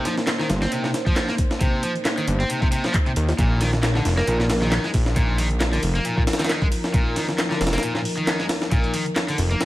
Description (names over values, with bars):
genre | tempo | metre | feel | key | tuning
breakbeat, breaks | 135 BPM | 4/4 | swing 55% on 16ths | unclear | A4 = 439 Hz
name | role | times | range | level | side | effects
dark analog pad | sustained chords | 0.0-9.7 s | F3 to C5 | -28 LUFS | left 1 dB | chorus, sidechain pumping
cranked stack guitar | riff | 0.0-9.7 s | Bb2 to C4 | -26 LUFS | equal | overdrive, tube saturation, ping-pong delay
breakbeat sampler-style drum kit | drums | 0.1-9.7 s | hi-hat, kick drum, snare drum | -23 LUFS | equal | studio reverb
punchy analog drum machine | drums | 0.1-9.7 s | handclaps, hi-hat | -32 LUFS | equal | studio reverb
fat analog bass | bass | 0.5-9.6 s | F1 to Eb2 | -21 LUFS | equal | none
marimba with hard mallets | melody | 4.2-4.4 s | Bb4 | -29 LUFS | equal | small speaker sound, ping-pong delay
room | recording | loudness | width
digital ambience | vinyl crackle | -19 LUFS | side -16 dB against mid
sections
0.0-9.7 A section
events
none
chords
0.0 Cm7; 3.4 Bbsus4